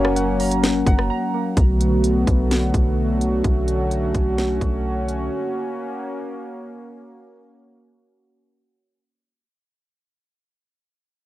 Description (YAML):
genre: hip hop, atmospheric cloud-rap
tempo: 128 BPM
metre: 4/4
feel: half-time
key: B minor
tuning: A4 = 445 Hz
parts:
  - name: warm analog pad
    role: sustained chords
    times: 0.0-9.0 s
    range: D3 to F#4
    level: -22 LUFS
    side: equal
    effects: chorus, sidechain pumping, low-pass filter, cassette tape
  - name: muted felt-like synth keys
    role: arpeggios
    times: 0.0-1.6 s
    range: A#3 to A#5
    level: -28 LUFS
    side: right 2 dB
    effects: chorus, cassette tape, tape echo
  - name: soft 808-style bass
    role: bass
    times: 0.0-5.3 s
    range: F#1 to B1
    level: -23 LUFS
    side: equal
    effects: none
  - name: trap drum kit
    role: drums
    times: 0.0-5.2 s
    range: hi-hat, kick drum, rim click, snare drum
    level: -20 LUFS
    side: equal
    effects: cassette tape
room: little or no reverb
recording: home recording on cassette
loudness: -18 LUFS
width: side -15 dB against mid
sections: 0.0-1.6 A section; 1.6-9.1 B section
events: break 1.1-1.6; fade-out 1.6-9.1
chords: 0.0 F#; 1.6 Bm7; 5.3 F#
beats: 0.16 0.63 1.10 | 1.57 2.04 2.51 2.97 | 3.44 3.91 4.38 4.85 | 5.32 5.79 6.26 6.72 | 7.19 7.66 8.13 8.60